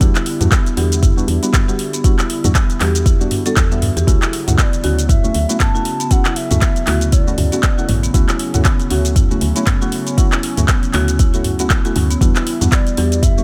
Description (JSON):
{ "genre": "afro house", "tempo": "118 BPM", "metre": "4/4", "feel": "swing 57% on 16ths", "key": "unclear", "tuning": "A4 = 444 Hz", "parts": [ { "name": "warm analog pad", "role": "sustained chords", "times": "0.0-13.4 s", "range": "C#3 to E4", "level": "-30 LUFS", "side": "equal", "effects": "chorus, sidechain pumping" }, { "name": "marimba with medium hard mallets", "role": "arpeggios", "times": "0.0-13.4 s", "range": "B3 to E5", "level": "-26 LUFS", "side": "equal", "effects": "sidechain pumping, dub echo" }, { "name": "deep mellow chord stab", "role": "stabs", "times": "0.0-13.4 s", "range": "G3 to F#4", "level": "-25 LUFS", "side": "equal", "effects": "chorus, sidechain pumping, dub echo" }, { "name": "woody FM bass", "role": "bass", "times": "0.0-13.4 s", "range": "A1 to E2", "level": "-20 LUFS", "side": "equal", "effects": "sidechain pumping" }, { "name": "afro-pop drum kit", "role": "drums", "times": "0.0-13.4 s", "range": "handclaps, hi-hat, shaker, toms", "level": "-23 LUFS", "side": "equal", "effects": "none" }, { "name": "electronic kick drum", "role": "drums", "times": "0.0-13.3 s", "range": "none", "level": "-17 LUFS", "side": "equal", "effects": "none" }, { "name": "bass bansuri", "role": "melody", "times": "4.6-7.9, 12.7-13.4 s", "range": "D5 to A5", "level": "-28 LUFS", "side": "equal", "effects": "vintage 12-bit sampler grit" } ], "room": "digital ambience", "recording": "none", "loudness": "-15 LUFS", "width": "mono", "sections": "0.0-13.4 A section", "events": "none", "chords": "0.0 Em7; 4.1 Dmaj7; 12.2 Em7" }